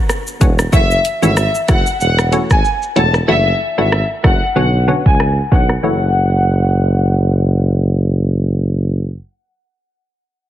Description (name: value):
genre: dancehall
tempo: 94 BPM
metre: 4/4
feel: swing 56% on 16ths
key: F# minor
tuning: A4 = 441 Hz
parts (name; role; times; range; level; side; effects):
- afro-pop drum kit; drums; 0.1-5.8 s; hi-hat, kick drum, rim click, shaker; -15 LUFS; equal; none
- wavetable chord stab; accompaniment; 0.4-9.7 s; D3 to F#4; -19 LUFS; left 1 dB; sidechain pumping
- breathy tuba; bass; 0.4-9.1 s; E1 to C#2; -15 LUFS; equal; none
- dark studio violin section; melody; 0.7-7.7 s; E5 to A5; -18 LUFS; left 1 dB; digital delay
room: light reverb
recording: heavily compressed radio sound, low-pass filter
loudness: -12 LUFS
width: side -12 dB against mid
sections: 0.7-5.8 A section; 5.8-8.4 B section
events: filter sweep 0.7-5.8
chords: 0.0 Bmadd9; 0.7 F#m7; 3.3 Dadd9/F#; 4.6 Bmadd9; 5.8 F#m7